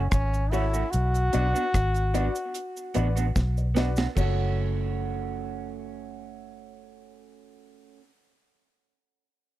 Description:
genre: roots reggae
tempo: 74 BPM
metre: 4/4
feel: straight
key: F# minor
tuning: A4 = 440 Hz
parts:
  - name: brilliant trombone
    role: melody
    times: 0.0-3.3 s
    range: C#4 to F#4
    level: -30 LUFS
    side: left 1 dB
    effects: tape echo
  - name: vintage muted fingered electric bass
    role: bass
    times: 0.0-8.0 s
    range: F#1 to B1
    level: -26 LUFS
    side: equal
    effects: none
  - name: deep reggae drum kit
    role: drums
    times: 0.1-4.4 s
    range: crash cymbal, hi-hat, kick drum, rim click, snare drum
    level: -27 LUFS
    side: equal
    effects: none
  - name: cabasa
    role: percussion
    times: 0.1-4.5 s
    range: none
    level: -43 LUFS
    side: right 4 dB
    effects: none
  - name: electric guitar through a small old amp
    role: accompaniment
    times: 0.5-8.0 s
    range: A3 to F#4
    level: -34 LUFS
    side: right 7 dB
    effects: tape echo
  - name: dark baby grand piano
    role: stabs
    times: 0.5-8.0 s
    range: F#4 to D5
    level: -33 LUFS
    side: left 5 dB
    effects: none
room: little or no reverb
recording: dry, close 1970s-style studio recording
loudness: -24 LUFS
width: side -14 dB against mid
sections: 0.0-4.2 A section; 4.2-7.4 B section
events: drum fill 3.4-4.2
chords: 0.0 F#m; 0.9 Bm; 4.2 F#m

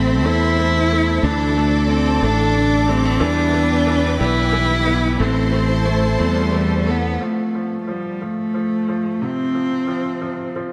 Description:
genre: six-eight pop ballad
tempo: 60 BPM (dotted quarters)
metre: 6/8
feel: straight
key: unclear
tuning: A4 = 439 Hz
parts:
  - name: rich cello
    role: melody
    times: 0.0-10.6 s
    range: G3 to E4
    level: -22 LUFS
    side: equal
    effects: analog delay
  - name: warm studio violin section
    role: second line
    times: 0.0-7.2 s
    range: A4 to C5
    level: -29 LUFS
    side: equal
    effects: analog delay
  - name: bright upright piano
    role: accompaniment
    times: 0.0-10.7 s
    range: C3 to B3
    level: -27 LUFS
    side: equal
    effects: none
  - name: rich studio string section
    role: sustained chords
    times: 0.0-7.2 s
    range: E4 to D6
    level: -32 LUFS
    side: equal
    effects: none
  - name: direct-recorded clean electric guitar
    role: arpeggios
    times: 0.0-7.8 s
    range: E3 to E4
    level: -32 LUFS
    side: equal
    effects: none
  - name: fretless electric bass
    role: bass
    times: 0.0-7.2 s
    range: A1 to E2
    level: -22 LUFS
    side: equal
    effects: analog chorus
room: moderate plate reverb, RT60 3.1 s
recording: dreamy mix soaked in reverb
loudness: -18 LUFS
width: mono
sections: 0.0-7.2 A section; 7.2-10.7 B section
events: none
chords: 0.0 Amadd9; 1.2 Dsus2; 3.2 Em7; 5.2 Am; 7.2 F

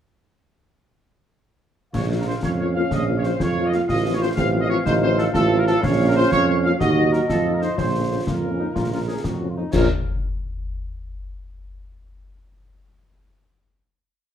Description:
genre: military-style march for wind band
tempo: 123 BPM (dotted quarters)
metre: 6/8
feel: straight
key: Bb minor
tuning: A4 = 439 Hz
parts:
  - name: mellow trumpet section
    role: melody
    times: 1.9-9.9 s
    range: A4 to F5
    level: -26 LUFS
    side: equal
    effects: none
  - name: mellow woodwind section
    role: second line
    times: 1.9-9.9 s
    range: Db4 to F5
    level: -29 LUFS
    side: left 1 dB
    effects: none
  - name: warm tuba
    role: bass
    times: 1.9-9.9 s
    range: A1 to F2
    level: -23 LUFS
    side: right 3 dB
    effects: none
  - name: concert snare drum, clash cymbals and concert bass drum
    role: drums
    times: 1.9-9.9 s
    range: none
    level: -27 LUFS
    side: left 2 dB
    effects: none
  - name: dark French horn section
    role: accompaniment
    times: 2.1-9.9 s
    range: F3 to F4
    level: -27 LUFS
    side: left 7 dB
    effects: none
  - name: warm euphonium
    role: second line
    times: 2.4-9.4 s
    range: C4 to Gb4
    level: -24 LUFS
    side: right 4 dB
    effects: none
room: light reverb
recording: dark, warm production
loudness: -18 LUFS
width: side -9 dB against mid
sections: 1.9-9.7 A section; 9.7-10.7 final chord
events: none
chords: 1.9 Bbm; 3.9 F7/A; 5.8 Bbm; 6.8 Ebm; 7.3 F7; 7.8 Bbm

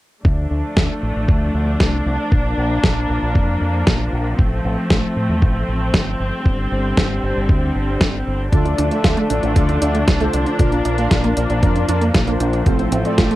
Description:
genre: italo disco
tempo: 116 BPM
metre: 4/4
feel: straight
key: D minor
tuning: A4 = 440 Hz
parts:
  - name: rich symphonic string section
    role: sustained chords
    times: 0.2-13.4 s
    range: D3 to D4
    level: -22 LUFS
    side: equal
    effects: vintage 12-bit sampler grit
  - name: fingered electric bass with an envelope filter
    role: bass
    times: 0.2-13.3 s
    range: G1 to A2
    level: -21 LUFS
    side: equal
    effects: none
  - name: electronic kick drum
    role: drums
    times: 0.2-13.3 s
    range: none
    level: -17 LUFS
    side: equal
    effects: overdrive
  - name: gated 80s digital drum machine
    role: drums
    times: 0.8-13.4 s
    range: hi-hat, snare drum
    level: -19 LUFS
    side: equal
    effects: gated reverb, gated reverb snare, overdrive
  - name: analog pluck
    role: arpeggios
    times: 8.5-13.4 s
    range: C3 to F4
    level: -23 LUFS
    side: right 3 dB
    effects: chorus, tape echo
  - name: analog synth brass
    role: stabs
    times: 8.5-13.4 s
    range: A2 to F5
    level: -22 LUFS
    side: left 1 dB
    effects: chorus, tape echo
room: little or no reverb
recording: dry, close 1970s-style studio recording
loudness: -15 LUFS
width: side -16 dB against mid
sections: 0.2-13.4 A section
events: none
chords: 0.2 Dm; 2.3 Bb; 4.4 F/A; 6.5 Gsus4; 8.5 Dm; 10.6 Bb; 12.7 F/A

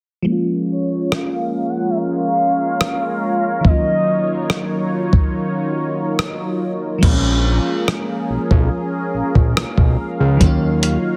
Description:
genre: contemporary R&B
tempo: 71 BPM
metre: 4/4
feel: straight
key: unclear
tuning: A4 = 440 Hz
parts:
  - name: FM electric piano with soft pad layer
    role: accompaniment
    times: 0.2-11.2 s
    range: Eb3 to F4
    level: -24 LUFS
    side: equal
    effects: chorus, low-pass filter
  - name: warm analog pad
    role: sustained chords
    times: 0.3-11.2 s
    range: Gb3 to F5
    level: -26 LUFS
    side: equal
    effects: chorus, sidechain pumping, low-pass filter
  - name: gliding portamento lead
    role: melody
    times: 0.7-4.9 s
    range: Db5 to Gb5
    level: -23 LUFS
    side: equal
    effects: chorus, low-pass filter, delay
  - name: dusty soul sampler-style drum kit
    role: drums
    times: 1.1-11.0 s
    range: crash cymbal, hi-hat, kick drum, rim click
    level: -19 LUFS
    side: equal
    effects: soft clipping on snare
  - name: fat analog bass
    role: bass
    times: 7.0-11.0 s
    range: Bb1 to Eb2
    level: -20 LUFS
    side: equal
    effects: none
room: little or no reverb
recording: dense, heavily limited modern master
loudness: -18 LUFS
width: mono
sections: 0.3-7.0 A section; 7.0-11.2 B section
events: filter sweep 0.3-7.0; break 5.3-7.0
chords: 0.3 Bbm7; 3.6 Ebm9; 7.0 Bbm7; 10.4 Ebm9

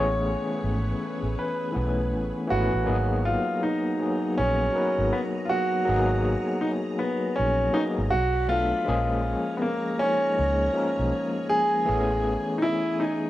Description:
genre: R&B, neo-soul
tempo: 80 BPM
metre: 4/4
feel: swing 59% on 16ths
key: G# dorian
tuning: A4 = 440 Hz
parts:
  - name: warm concert grand piano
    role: melody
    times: 0.0-13.3 s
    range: A#3 to C#5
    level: -26 LUFS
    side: equal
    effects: none
  - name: overdriven tine electric piano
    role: accompaniment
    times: 0.0-13.3 s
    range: E3 to B4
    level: -28 LUFS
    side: left 2 dB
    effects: medium tremolo
  - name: soft string machine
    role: sustained chords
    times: 0.0-13.3 s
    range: F#3 to B5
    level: -39 LUFS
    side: right 1 dB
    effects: ensemble chorus
  - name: vintage muted fingered electric bass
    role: bass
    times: 0.0-12.3 s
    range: G#1 to C#2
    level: -28 LUFS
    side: right 1 dB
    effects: none
room: light reverb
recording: rough home demo mix, nothing above 11.0 kHz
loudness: -23 LUFS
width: side -15 dB against mid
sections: 0.0-2.9 A section; 2.9-13.3 B section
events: none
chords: 0.0 Amaj9; 2.9 G#m9; 8.1 Bm7; 8.9 A#m7; 11.9 Amaj9

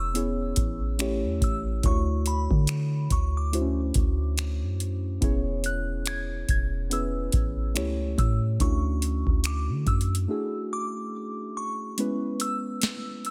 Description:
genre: contemporary R&B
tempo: 71 BPM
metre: 4/4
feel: swing 58% on 16ths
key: E mixolydian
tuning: A4 = 440 Hz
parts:
  - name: glassy synth bell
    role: melody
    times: 0.0-13.3 s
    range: B5 to G#6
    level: -37 LUFS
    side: equal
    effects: chorus, tape echo
  - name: muted felt-like synth keys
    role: accompaniment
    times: 0.0-13.3 s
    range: G#3 to C#5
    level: -34 LUFS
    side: equal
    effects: chorus
  - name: warm 808-style bass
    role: bass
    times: 0.0-10.3 s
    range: E1 to D3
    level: -30 LUFS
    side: equal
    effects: none
  - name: booming analog drum machine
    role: drums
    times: 0.2-13.3 s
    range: finger snaps, hi-hat, kick drum, snare drum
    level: -28 LUFS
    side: equal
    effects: none
room: little or no reverb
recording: none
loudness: -27 LUFS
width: mono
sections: 0.0-12.0 A section; 12.0-13.3 B section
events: break 10.3-12.0; kick muted 12.0-13.3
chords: 0.0 E6; 1.0 A7; 1.8 Dmaj9; 5.2 E6; 7.8 A7; 8.6 Dmaj9; 12.0 E6

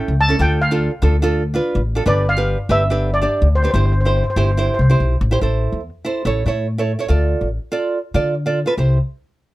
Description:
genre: calypso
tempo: 143 BPM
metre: 4/4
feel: straight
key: C major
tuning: A4 = 441 Hz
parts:
  - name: steel pan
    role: melody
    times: 0.0-4.9 s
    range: C5 to A5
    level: -21 LUFS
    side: equal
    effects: none
  - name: nylon-string guitar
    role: accompaniment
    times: 0.0-9.0 s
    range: C#4 to D5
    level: -20 LUFS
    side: right 3 dB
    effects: none
  - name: upright bass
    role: bass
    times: 0.1-9.0 s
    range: G1 to D3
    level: -17 LUFS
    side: left 1 dB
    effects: none
room: little or no reverb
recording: close, detailed microphones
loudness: -15 LUFS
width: side -17 dB against mid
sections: 0.0-5.4 A section; 5.4-8.8 B section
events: none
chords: 0.4 Dm; 2.1 G; 3.7 C/G; 5.4 Am; 6.3 A; 7.1 Dm; 8.8 C

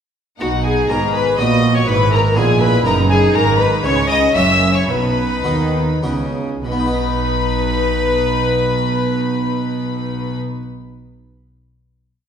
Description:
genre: classical, baroque-style concerto movement with solo episodes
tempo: 94-123 BPM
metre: 3/4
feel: straight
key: B major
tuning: A4 = 440 Hz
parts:
  - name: rich chamber violin section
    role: melody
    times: 0.4-10.3 s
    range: F#5 to E6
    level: -23 LUFS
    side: left 4 dB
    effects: none
  - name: rich violin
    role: melody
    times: 0.4-10.4 s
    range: F#4 to E5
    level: -21 LUFS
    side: left 3 dB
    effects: none
  - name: warm chamber violin section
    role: second line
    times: 0.4-10.3 s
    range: F#4 to E5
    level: -22 LUFS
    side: left 3 dB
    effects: none
  - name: dark chamber viola section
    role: accompaniment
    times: 0.4-10.3 s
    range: C#4 to G#4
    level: -25 LUFS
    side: right 4 dB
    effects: none
  - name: harpsichord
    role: accompaniment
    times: 0.4-10.6 s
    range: F#2 to D#5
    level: -24 LUFS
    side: equal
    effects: none
  - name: rich chamber double bass section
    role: bass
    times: 0.4-10.3 s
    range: F#1 to D#2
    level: -21 LUFS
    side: right 2 dB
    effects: none
  - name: warm chamber cello section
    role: bass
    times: 0.4-10.3 s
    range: F#2 to D#3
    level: -21 LUFS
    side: right 3 dB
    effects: none
room: wet recital hall reverb, RT60 1.4 s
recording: heard from further back in the room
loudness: -14 LUFS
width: side -8 dB against mid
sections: 0.4-6.7 ritornello; 6.7-10.5 final chord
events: slowing down 2.6-6.7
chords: 0.4 B; 1.9 E/G#; 3.3 C#m/G#; 4.4 F#7; 4.9 B

